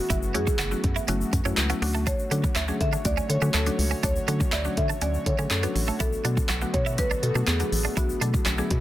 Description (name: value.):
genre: dance-pop.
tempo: 122 BPM.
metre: 4/4.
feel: straight.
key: unclear.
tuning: A4 = 440 Hz.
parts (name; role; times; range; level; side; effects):
marimba with medium mallets; melody; 0.0-8.8 s; F#4 to E5; -31 LUFS; equal; tape echo.
warm analog pad; sustained chords; 0.0-8.8 s; D3 to C#5; -36 LUFS; left 1 dB; chorus, sidechain pumping.
twelve-string electric guitar; riff; 0.0-8.6 s; A3 to F#4; -33 LUFS; right 7 dB; analog chorus.
mallet-like synth pluck; accompaniment; 0.1-8.8 s; F#3 to A4; -32 LUFS; left 2 dB; chorus, sidechain pumping.
organ-like FM bass; bass; 0.1-8.8 s; F#1 to D3; -27 LUFS; equal; sidechain pumping.
deep house drum kit; drums; 0.1-8.8 s; handclaps, hi-hat, kick drum, snare drum; -27 LUFS; equal; none.
egg shaker; percussion; 0.1-8.7 s; none; -40 LUFS; left 6 dB; none.
room: light reverb.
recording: dense, heavily limited modern master.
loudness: -22 LUFS.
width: side -14 dB against mid.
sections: 0.0-8.8 A section.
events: none.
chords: 0.0 F#m7; 1.8 Dmaj7.